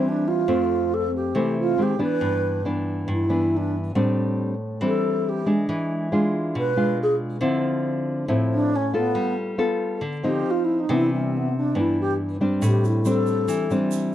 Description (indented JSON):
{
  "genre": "bossa nova",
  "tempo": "138 BPM",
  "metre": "4/4",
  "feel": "straight",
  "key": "A minor",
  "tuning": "A4 = 440 Hz",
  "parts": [
    { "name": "mellow wooden-headed alto flute", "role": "melody", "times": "0.0-13.7 s", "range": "G3 to B4", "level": "-24 LUFS", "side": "right 1 dB", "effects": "none" },
    { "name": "nylon-string guitar", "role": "accompaniment", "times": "0.0-14.1 s", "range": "F2 to A4", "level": "-22 LUFS", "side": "left 1 dB", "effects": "none" },
    { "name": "egg shaker", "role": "percussion", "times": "12.6-14.1 s", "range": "none", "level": "-41 LUFS", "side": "right 16 dB", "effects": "none" }
  ],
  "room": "little or no reverb",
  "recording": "dry, close 1970s-style studio recording",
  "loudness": "-20 LUFS",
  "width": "side -12 dB against mid",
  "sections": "0.0-14.1 A section",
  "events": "alto flute solo 0.0-14.1",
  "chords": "0.5 Fmaj7; 1.8 D#maj7#5; 2.2 Em7/G; 3.9 Am7; 5.7 E7b9; 7.4 Dm9; 9.1 G9; 10.4 Cmadd11/F; 10.9 Cmaj9; 12.6 Am7"
}